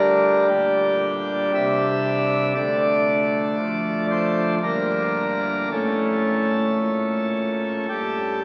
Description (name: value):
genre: classical, chorale-style piece for pipe organ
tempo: 54-60 BPM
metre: 3/4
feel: rubato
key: unclear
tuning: A4 = 439 Hz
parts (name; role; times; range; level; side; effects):
- pipe organ, principal chorus; solo; 0.0-8.4 s; G1 to E5; -22 LUFS; equal; none
room: wet cathedral reverb, RT60 4.5 s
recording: very old 78 rpm record, vinyl crackle, nothing above 10.8 kHz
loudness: -22 LUFS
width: mono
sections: 0.0-8.4 A section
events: none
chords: 0.0 Gm/D; 2.6 Dm; 4.6 Gm; 5.7 A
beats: 0.50 1.55 | 2.57 3.59 4.62 | 5.71 6.81 7.90